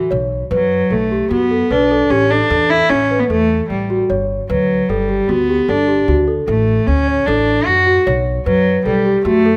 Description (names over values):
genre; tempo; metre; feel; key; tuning
contemporary instrumental, chamber music in an uneven meter; 151 BPM; 5/4; straight; B minor; A4 = 440 Hz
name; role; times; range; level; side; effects
large celesta; arpeggios; 0.0-9.6 s; F#4 to C#5; -19 LUFS; equal; none
upright bass; bass; 0.1-9.6 s; G1 to F#2; -23 LUFS; equal; none
dark cello; melody; 0.5-9.6 s; F#3 to F#4; -18 LUFS; equal; none
room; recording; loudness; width
light reverb; close, detailed microphones; -15 LUFS; mono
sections
0.0-9.6 A section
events
none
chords
0.1 B7(no3); 2.1 Asus4; 4.1 Gmaj7; 6.1 Dmaj7; 8.1 B5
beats
| 0.11 0.51 0.91 1.31 1.71 | 2.11 2.50 2.90 3.30 3.70 | 4.10 4.50 4.89 5.29 5.69 | 6.09 6.48 6.88 7.28 7.67 | 8.07 8.47 8.86 9.26